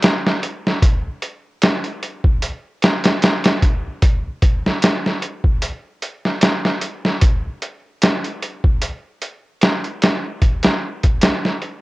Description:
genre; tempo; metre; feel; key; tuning
trip hop; 75 BPM; 4/4; swing 55% on 16ths; none; none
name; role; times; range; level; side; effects
trip hop sampler-style drum kit; drums; 0.0-11.8 s; hi-hat, kick drum, snare drum; -15 LUFS; equal; none
room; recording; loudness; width
light reverb; worn, warbling old tape, cassette tape, warbly pitch drift; -16 LUFS; side -20 dB against mid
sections
0.0-11.8 A section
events
none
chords
none

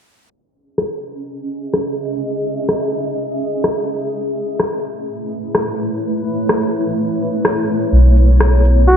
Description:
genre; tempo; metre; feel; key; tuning
future garage; 126 BPM; 4/4; swing 66% on 16ths; unclear; A4 = 440 Hz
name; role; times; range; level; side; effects
granular cloud pad; sustained chords; 1.2-9.0 s; A3 to E5; -19 LUFS; equal; built-in reverb
electronic rim click and shaker; drums; 0.8-8.8 s; none; -19 LUFS; left 1 dB; low-pass filter on snare, vintage 12-bit sampler grit, low-pass filter on perc, low-pass filter on room, gated reverb
soft dub sub bass; bass; 7.9-9.0 s; B1; -9 LUFS; equal; tube saturation
trumpet with bucket mute; melody; 8.9-9.0 s; F#4; -9 LUFS; equal; none
room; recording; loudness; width
moderate lush hall reverb, RT60 2.0 s; bright 1980s-style digital production, low-pass filter; -15 LUFS; side -8 dB against mid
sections
0.3-9.0 A section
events
filter sweep on drum 0.3-9.0; filter sweep on ambient pad 0.3-9.0; filter sweep 0.3-9.0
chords
0.3 C#m; 4.1 Amaj7; 7.9 Bsus4

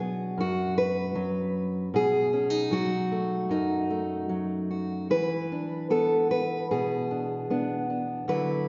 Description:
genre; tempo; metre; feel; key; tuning
folk, solo fingerstyle acoustic guitar; 76 BPM; 4/4; rubato; unclear; A4 = 440 Hz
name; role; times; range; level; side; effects
fingerpicked steel-string acoustic guitar; solo; 0.0-8.7 s; F#2 to B4; -28 LUFS; equal; none
room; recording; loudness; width
wet concert hall reverb, RT60 2.2 s; recorded in a church or concert hall, nothing above 7.6 kHz; -28 LUFS; mono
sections
0.0-8.7 A section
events
none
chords
0.0 Bm; 1.9 B7; 5.1 E7

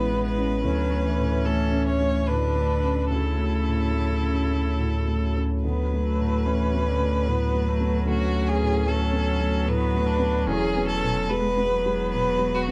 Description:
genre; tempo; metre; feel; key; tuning
neoclassical piano and strings; 73 BPM; 3/4; rubato; unclear; A4 = 441 Hz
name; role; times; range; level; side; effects
clear violin; melody; 0.0-12.7 s; F#4 to C#5; -30 LUFS; equal; none
rich cello; second line; 0.0-12.7 s; C#3 to G#3; -34 LUFS; equal; none
clear viola; accompaniment; 0.0-12.7 s; A3 to E4; -35 LUFS; equal; none
felt-muted upright piano; accompaniment; 0.0-12.7 s; D2 to C#4; -31 LUFS; equal; none
deep dark ambient pad; sustained chords; 0.0-12.7 s; A3 to C#5; -39 LUFS; equal; none
pure sine sub bass; bass; 0.0-12.7 s; E1 to D2; -28 LUFS; equal; none
room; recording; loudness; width
light reverb; dark, warm production; -24 LUFS; mono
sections
0.0-12.7 A section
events
none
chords
0.0 Aadd9; 0.6 Dmaj7; 5.6 Bm7/D; 10.5 E

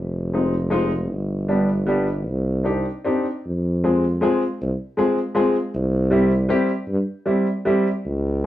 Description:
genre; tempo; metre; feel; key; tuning
musette waltz; 156 BPM; 3/4; rubato; C harmonic minor, F harmonic minor from 3.4 s; A4 = 440 Hz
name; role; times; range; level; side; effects
warm tuba; bass; 0.0-8.5 s; F1 to G2; -22 LUFS; equal; none
warm upright piano; accompaniment; 0.3-7.9 s; G3 to Ab4; -19 LUFS; left 1 dB; none
room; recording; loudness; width
wet studio reverb, RT60 0.6 s; band playing live in one room; -19 LUFS; side -13 dB against mid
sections
0.0-3.4 A section; 3.4-8.5 B section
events
none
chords
0.0 Fm7; 1.1 G; 2.3 Cmadd9; 3.4 Fm; 5.7 C

